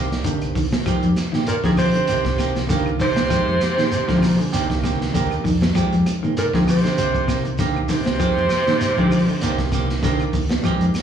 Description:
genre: afrobeat.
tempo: 98 BPM.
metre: 4/4.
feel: swing 55% on 16ths.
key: F dorian.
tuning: A4 = 441 Hz.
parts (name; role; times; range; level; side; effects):
overdriven reed electric piano; accompaniment; 0.0-11.0 s; Eb3 to Bb5; -32 LUFS; right 4 dB; slapback echo.
semi-hollow electric guitar; arpeggios; 0.0-10.9 s; C3 to F3; -26 LUFS; left 6 dB; none.
semi-hollow electric guitar; stabs; 0.0-11.0 s; Eb3 to G4; -26 LUFS; right 8 dB; slapback echo.
fingered electric bass; bass; 0.0-11.0 s; C2 to F3; -22 LUFS; equal; none.
crunchy breakbeat drum kit; drums; 0.1-11.0 s; hi-hat, kick drum, snare drum; -25 LUFS; right 1 dB; none.
congas; percussion; 0.1-11.0 s; none; -30 LUFS; right 2 dB; none.
shekere; percussion; 0.1-11.0 s; none; -33 LUFS; equal; slapback echo.
claves; percussion; 0.4-11.0 s; none; -42 LUFS; left 4 dB; none.
breathy alto saxophone; melody; 1.5-9.7 s; Ab4 to C5; -23 LUFS; right 3 dB; slapback echo.
clear baritone saxophone; second line; 1.5-9.7 s; Ab2 to C3; -27 LUFS; left 1 dB; slapback echo.
room: light reverb, small room ambience.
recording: live gig heard through the venue's PA, club ambience, studio reverb.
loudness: -17 LUFS.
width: side -8 dB against mid.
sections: 0.0-11.0 A section.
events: reed electric piano fill 0.0-0.9, 3.9-5.8.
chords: 0.0 Cm7; 0.9 Fm9; 2.1 Cm7; 3.3 Fm9; 4.5 Cm7; 5.8 Fm9; 7.0 Cm7; 8.2 Fm9; 9.4 Cm7.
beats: 0.25 | 0.86 1.48 2.09 2.70 | 3.31 3.92 4.54 5.15 | 5.76 6.37 6.98 7.59 | 8.20 8.81 9.42 10.03 | 10.64.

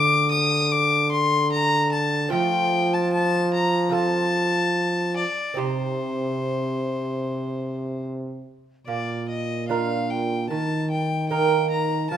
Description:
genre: classical, renaissance-style consort dance.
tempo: 74 BPM.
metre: 4/4.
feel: straight.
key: C dorian.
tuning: A4 = 440 Hz.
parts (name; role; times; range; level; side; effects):
rich violin; melody; 0.0-12.2 s; C5 to Eb6; -24 LUFS; left 3 dB; none.
lute; accompaniment; 0.0-12.2 s; Bb2 to Bb4; -28 LUFS; right 6 dB; none.
warm trombone; bass; 0.0-12.2 s; Bb2 to F3; -25 LUFS; right 1 dB; none.
room: moderate recital hall reverb, RT60 1.4 s.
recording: none.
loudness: -21 LUFS.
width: side -10 dB against mid.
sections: 0.0-8.9 A section; 8.9-12.2 B section.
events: none.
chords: 0.0 Dm; 2.3 F; 5.6 Cm; 8.9 Bb; 10.5 Eb5.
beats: 0.71 1.52 | 2.33 3.13 3.94 4.75 | 5.57 6.40 7.22 8.05 | 8.87 9.68 10.49 11.30 | 12.11.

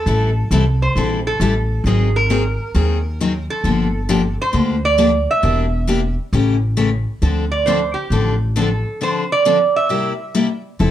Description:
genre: acoustic string swing (jazz manouche).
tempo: 134 BPM.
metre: 4/4.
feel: swing 64% on 8ths.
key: D minor.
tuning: A4 = 437 Hz.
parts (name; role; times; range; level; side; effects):
lap resonator guitar; melody; 0.0-10.6 s; G4 to E5; -19 LUFS; right 4 dB; slapback echo.
picked steel-string acoustic guitar; accompaniment; 0.1-10.9 s; C3 to A4; -19 LUFS; left 4 dB; none.
upright bass; bass; 0.1-10.9 s; E1 to D#2; -18 LUFS; equal; none.
room: light reverb.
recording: dark, warm production.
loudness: -15 LUFS.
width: side -11 dB against mid.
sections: 0.0-10.8 A section.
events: none.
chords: 0.1 Am7; 1.9 G#9; 3.6 Gm7; 5.4 Em7b5; 6.3 A7; 7.2 Dm7; 9.9 C7.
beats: | 0.07 0.52 0.96 1.41 | 1.86 2.30 2.75 3.20 | 3.64 4.09 4.54 4.98 | 5.43 5.88 6.32 6.77 | 7.22 7.67 8.11 8.56 | 9.01 9.46 9.90 10.35 | 10.80.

